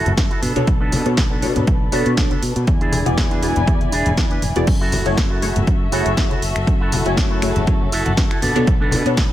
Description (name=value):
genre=filtered disco house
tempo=120 BPM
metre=4/4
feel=swing 54% on 16ths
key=F# minor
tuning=A4 = 439 Hz
part: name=muted studio violin section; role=sustained chords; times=0.0-9.3 s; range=D4 to G#5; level=-26 LUFS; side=left 2 dB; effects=sidechain pumping, low-pass filter
part: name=electric guitar with an envelope filter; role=riff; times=0.0-9.3 s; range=B3 to F#5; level=-25 LUFS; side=right 2 dB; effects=vintage 12-bit sampler grit, sidechain pumping, low-pass filter
part: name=modern bright fingered electric bass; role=bass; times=0.0-9.3 s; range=E1 to B2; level=-23 LUFS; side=equal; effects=tube saturation, sidechain pumping, low-pass filter
part: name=punchy analog drum machine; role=drums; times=0.1-9.3 s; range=crash cymbal, finger snaps, hi-hat, snare drum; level=-26 LUFS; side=equal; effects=sidechain pumping on hats, sidechain pumping on cymbals
part: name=egg shaker and congas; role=percussion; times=0.1-9.3 s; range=none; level=-25 LUFS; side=left 2 dB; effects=sidechain pumping on perc, low-pass filter on perc
part: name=electronic kick drum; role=drums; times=0.2-9.3 s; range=none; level=-19 LUFS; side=equal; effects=overdrive
part: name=funky polysynth comp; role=accompaniment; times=0.6-9.2 s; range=A3 to G#5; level=-24 LUFS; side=left 1 dB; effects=chorus, phaser, sidechain pumping, low-pass filter
room=light reverb, digital ambience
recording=none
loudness=-15 LUFS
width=side -13 dB against mid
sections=0.0-9.3 A section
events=clean electric guitar fill 7.7-8.7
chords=0.4 Bm7; 2.7 E7; 4.7 F#m7; 8.4 Bm7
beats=0.17 | 0.68 1.18 1.68 2.17 | 2.67 3.17 3.67 4.17 | 4.67 5.17 5.67 6.17 | 6.67 7.17 7.67 8.18 | 8.68 9.18